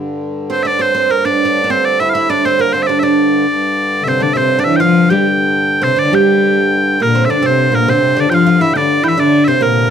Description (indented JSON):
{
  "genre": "medieval dance",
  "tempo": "136 BPM (dotted quarters)",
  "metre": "6/8",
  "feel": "straight",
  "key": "G dorian",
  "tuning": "A4 = 440 Hz",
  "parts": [
    { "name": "hand-pumped harmonium", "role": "drone", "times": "0.0-9.9 s", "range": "G2 to D3", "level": "-22 LUFS", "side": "left 2 dB", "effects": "none" },
    { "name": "loud bright bagpipes", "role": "melody", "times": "0.5-9.9 s", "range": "Bb4 to G5", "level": "-15 LUFS", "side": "equal", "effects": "none" },
    { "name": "oud", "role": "second line", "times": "0.5-9.9 s", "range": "Bb3 to G4", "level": "-16 LUFS", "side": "right 6 dB", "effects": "none" },
    { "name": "rich viola da gamba", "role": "second line", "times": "4.0-9.9 s", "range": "Bb2 to G3", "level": "-15 LUFS", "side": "left 5 dB", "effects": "none" }
  ],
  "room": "moderate studio reverb, RT60 0.6 s",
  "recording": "dry, close 1970s-style studio recording",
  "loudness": "-11 LUFS",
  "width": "side -8 dB against mid",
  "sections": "0.0-7.0 A section; 7.0-9.9 B section",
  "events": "speeding up 0.0-9.9",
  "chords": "none"
}